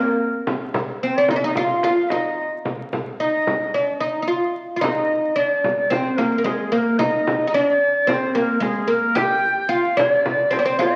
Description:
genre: Turkish makam ensemble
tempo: 110 BPM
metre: 4/4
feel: straight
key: unclear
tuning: A4 = 439 Hz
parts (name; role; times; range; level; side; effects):
- oud; melody; 0.0-11.0 s; Ab3 to G4; -22 LUFS; equal; none
- breathy bright ney; second line; 0.0-11.0 s; Ab4 to G5; -25 LUFS; equal; none
- frame drum; percussion; 0.5-10.9 s; none; -29 LUFS; equal; none
room: wet large studio reverb, RT60 1.2 s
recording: very old 78 rpm record, vinyl crackle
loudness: -20 LUFS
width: mono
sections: 0.0-4.8 A section; 4.8-11.0 B section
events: none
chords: none

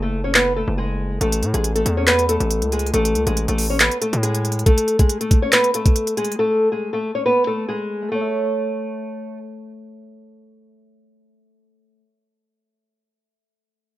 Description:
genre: hip hop, trap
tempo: 139 BPM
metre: 4/4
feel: half-time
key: A major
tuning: A4 = 440 Hz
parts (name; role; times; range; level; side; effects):
- nylon-string guitar; melody; 0.0-9.4 s; G#3 to C#5; -20 LUFS; left 1 dB; low-pass filter
- distorted 808-style bass; bass; 0.0-4.6 s; F#1 to A2; -22 LUFS; equal; distortion
- trap drum kit; drums; 0.3-6.4 s; handclaps, hi-hat, kick drum; -18 LUFS; equal; none
- Celtic harp; accompaniment; 8.0-12.2 s; A3 to E5; -27 LUFS; right 7 dB; low-pass filter
room: moderate small room reverb, RT60 0.6 s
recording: rough home demo mix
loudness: -17 LUFS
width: side -15 dB against mid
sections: 0.0-8.1 A section; 8.1-11.6 B section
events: break 0.0-1.2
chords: 0.0 F#m; 1.2 A5; 4.7 Amaj7(no3)/G#; 8.1 A

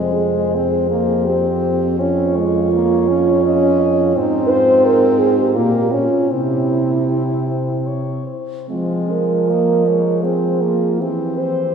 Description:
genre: classical, lyrical piece for horn quartet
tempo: 69-88 BPM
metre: 3/4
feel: rubato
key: F minor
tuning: A4 = 440 Hz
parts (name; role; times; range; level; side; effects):
- warm French horn; melody; 0.0-11.7 s; E4 to Eb5; -26 LUFS; left 8 dB; none
- mellow French horn; second line; 0.0-11.7 s; C4 to C5; -18 LUFS; right 6 dB; none
- mellow French horn; accompaniment; 0.0-11.7 s; Ab3 to Db4; -20 LUFS; left 2 dB; none
- mellow French horn; bass; 0.0-11.7 s; F2 to F3; -22 LUFS; left 1 dB; none
room: wet church reverb, RT60 3.7 s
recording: heard from further back in the room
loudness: -14 LUFS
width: side -6 dB against mid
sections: 0.0-11.7 A section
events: none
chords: 0.0 Fm; 2.0 Db69/F; 4.2 Fm/Ab; 5.5 Gdim/Bb; 6.3 C; 8.7 Fm; 11.0 C/E

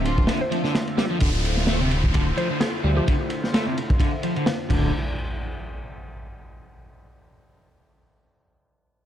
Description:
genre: breakbeat, breaks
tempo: 129 BPM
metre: 4/4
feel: swing 56% on 16ths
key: D minor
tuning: A4 = 439 Hz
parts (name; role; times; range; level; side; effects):
- phased analog pad; sustained chords; 0.0-4.9 s; D3 to E5; -31 LUFS; left 1 dB; phaser, chorus, vintage 12-bit sampler grit, sidechain pumping
- crunchy overdriven guitar; riff; 0.0-4.9 s; C3 to A3; -27 LUFS; equal; low-pass filter, ping-pong delay
- dark chamber string section; stabs; 0.0-0.7 s; A3 to F4; -30 LUFS; right 3 dB; ping-pong delay
- fat analog bass; bass; 0.0-4.9 s; D1 to D2; -24 LUFS; equal; tube saturation
- crunchy breakbeat drum kit; drums; 0.1-4.8 s; crash cymbal, kick drum, ride cymbal, snare drum; -24 LUFS; equal; none
- mallet-like synth pluck; melody; 0.4-3.1 s; G4 to C5; -31 LUFS; left 1 dB; chorus, phaser, telephone sound, ping-pong delay
- downlifter and impact; sound effects; 1.2-6.6 s; none; -32 LUFS; equal; none
room: small room ambience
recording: dark, warm production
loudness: -20 LUFS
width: side -10 dB against mid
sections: 0.0-1.2 A section; 1.2-4.9 B section; 4.9-6.8 C section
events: drop 0.0-1.2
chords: 0.0 Dm7; 4.9 N.C.

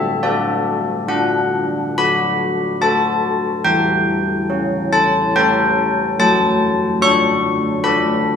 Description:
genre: classical, tune for church bells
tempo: 71 BPM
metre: 3/4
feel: straight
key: D major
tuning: A4 = 440 Hz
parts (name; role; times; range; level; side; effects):
- old church bells; solo; 0.0-8.4 s; E3 to C#6; -14 LUFS; left 2 dB; none
room: moderate concert hall reverb, RT60 1.9 s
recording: small room ambience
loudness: -14 LUFS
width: side -7 dB against mid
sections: 0.0-1.1 A section; 1.1-8.4 B section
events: none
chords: 0.0 D; 3.7 A7/E; 6.2 D/F#

